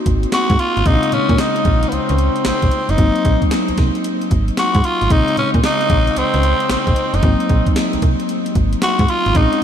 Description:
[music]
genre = R&B, new jack swing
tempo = 113 BPM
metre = 4/4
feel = swing 65% on 16ths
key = unclear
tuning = A4 = 440 Hz
[part]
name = bell-like tine electric piano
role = accompaniment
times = 0.0-9.6 s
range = Db3 to Gb4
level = -21 LUFS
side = left 3 dB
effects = wide subtle chorus
[part]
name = slap-like FM bass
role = bass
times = 0.1-9.5 s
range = Gb1 to Bb2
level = -17 LUFS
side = right 1 dB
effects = none
[part]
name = gated 80s digital drum machine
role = drums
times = 0.1-9.6 s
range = handclaps, hi-hat, kick drum, snare drum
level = -19 LUFS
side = right 1 dB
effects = gated reverb, gated reverb snare
[part]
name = raspy tenor saxophone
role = melody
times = 0.3-9.6 s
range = Cb4 to Gb4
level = -18 LUFS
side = equal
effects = analog delay
[sound]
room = moderate huge ambient reverb, RT60 7.1 s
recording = dreamy mix soaked in reverb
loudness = -14 LUFS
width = side -9 dB against mid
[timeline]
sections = 0.0-9.6 A section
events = none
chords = 0.0 Ab9; 0.9 Bbm11; 3.0 Ab9; 5.1 Bbm11; 7.2 Ab9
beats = 0.32 | 0.85 1.39 1.92 2.45 | 2.98 3.51 4.04 4.57 | 5.10 5.63 6.17 6.70 | 7.23 7.76 8.29 8.82 | 9.35

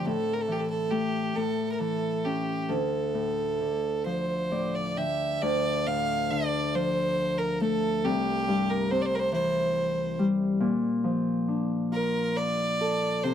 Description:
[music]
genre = celtic folk, Celtic slow air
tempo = 43-47 BPM (dotted quarters)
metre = 6/8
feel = rubato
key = D minor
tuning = A4 = 441 Hz
[part]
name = bright fiddle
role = melody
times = 0.0-13.3 s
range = G4 to F5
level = -28 LUFS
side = right 2 dB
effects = none
[part]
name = Celtic harp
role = accompaniment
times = 0.0-13.3 s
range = C2 to G5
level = -28 LUFS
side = left 2 dB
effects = none
[sound]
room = small room ambience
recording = dry, close 1970s-style studio recording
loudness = -25 LUFS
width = side -9 dB against mid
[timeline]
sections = 0.0-5.4 A section; 5.4-13.3 B section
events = harp fill 4.1-5.4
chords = 0.1 A5; 1.4 A; 2.7 Dm; 8.1 C; 10.6 Bbmaj7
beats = | 0.06 1.36 | 2.69 4.05 | 5.42 6.75 | 8.05 9.34 | 10.61 11.92 | 13.25

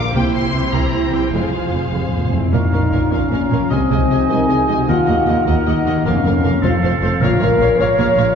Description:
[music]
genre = cinematic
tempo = 102 BPM (dotted quarters)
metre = 6/8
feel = straight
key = Bb minor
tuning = A4 = 442 Hz
[part]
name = rich symphonic violin section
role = melody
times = 0.0-8.3 s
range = F5 to D6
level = -29 LUFS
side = left 2 dB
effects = none
[part]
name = warm symphonic violin section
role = second line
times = 0.0-8.2 s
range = G4 to F5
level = -27 LUFS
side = left 2 dB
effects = none
[part]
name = warm symphonic viola section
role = accompaniment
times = 0.0-8.2 s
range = C3 to F4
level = -25 LUFS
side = right 4 dB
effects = none
[part]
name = concert harp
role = arpeggios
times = 0.0-8.3 s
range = Bb2 to Bb5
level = -24 LUFS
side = left 3 dB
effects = none
[part]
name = warm symphonic cello section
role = bass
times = 0.0-8.3 s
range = Eb2 to C3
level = -23 LUFS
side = right 2 dB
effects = none
[part]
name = clear symphonic double bass section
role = bass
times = 0.1-8.2 s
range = F1 to Eb2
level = -21 LUFS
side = right 2 dB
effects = none
[part]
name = timpani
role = percussion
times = 1.3-2.5, 6.1-7.8 s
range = F2 to Bb2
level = -23 LUFS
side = equal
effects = none
[part]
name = warm French horn section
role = sustained chords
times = 1.9-8.3 s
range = C4 to Db5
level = -18 LUFS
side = left 2 dB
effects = none
[part]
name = mellow flute section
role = second line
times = 2.5-8.3 s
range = F5 to Bb5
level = -25 LUFS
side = left 1 dB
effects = none
[part]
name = warm oboe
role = second line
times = 2.5-8.3 s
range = A4 to F5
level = -25 LUFS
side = right 2 dB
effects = none
[sound]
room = wet concert hall reverb, RT60 1.9 s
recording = heard from further back in the room, nothing above 7.6 kHz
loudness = -14 LUFS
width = side -7 dB against mid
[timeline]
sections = 0.0-2.5 A section; 2.5-8.3 B section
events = timpani fill 1.3-2.5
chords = 0.1 C7; 1.3 Fm; 2.5 Bbm; 3.7 Ab/C; 4.9 Ebm; 6.1 Bbm/F; 6.6 F; 7.2 Bbm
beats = | 0.14 0.73 | 1.33 1.93 | 2.53 3.12 | 3.71 4.30 | 4.88 5.47 | 6.05 6.63 | 7.21 7.79

